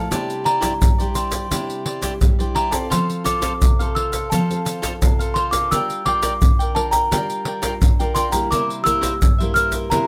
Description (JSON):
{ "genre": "samba and choro", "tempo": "86 BPM", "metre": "4/4", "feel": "straight", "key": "F major", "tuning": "A4 = 440 Hz", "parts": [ { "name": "celesta", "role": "melody", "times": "0.0-10.1 s", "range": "A5 to F6", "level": "-24 LUFS", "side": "equal", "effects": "none" }, { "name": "cavaquinho", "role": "accompaniment", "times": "0.0-10.1 s", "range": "E4 to G5", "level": "-30 LUFS", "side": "equal", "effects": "none" }, { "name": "nylon-string guitar", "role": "accompaniment", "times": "0.0-10.1 s", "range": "G2 to Bb4", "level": "-29 LUFS", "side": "equal", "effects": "none" }, { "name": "egg shaker, surdo and pandeiro", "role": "percussion", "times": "0.1-10.1 s", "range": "none", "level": "-22 LUFS", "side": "equal", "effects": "none" } ], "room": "light reverb", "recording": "none", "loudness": "-19 LUFS", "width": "mono", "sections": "0.0-10.1 A section", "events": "none", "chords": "0.1 Cadd9; 2.9 F; 5.7 Gm7; 8.5 C7" }